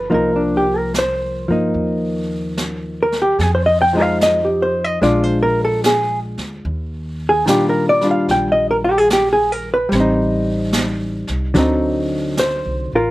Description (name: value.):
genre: jazz ballad.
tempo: 73 BPM.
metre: 4/4.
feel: swing 68% on 8ths.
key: Eb major.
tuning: A4 = 440 Hz.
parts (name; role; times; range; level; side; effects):
hollow-body jazz guitar; accompaniment; 0.0-13.1 s; D3 to G5; -15 LUFS; equal; none.
upright bass; bass; 0.0-13.1 s; A1 to Bb2; -24 LUFS; equal; none.
jazz brush drum kit; drums; 0.1-13.1 s; brushed snare drum, hi-hat, snare drum; -25 LUFS; right 1 dB; none.
room: little or no reverb.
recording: none.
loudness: -15 LUFS.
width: side -17 dB against mid.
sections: 0.0-13.1 A section.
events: none.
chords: 0.1 Cm7; 3.4 Fm9; 5.0 Bb7; 6.7 Ebmaj9; 9.9 Am7b5; 11.6 D7b9.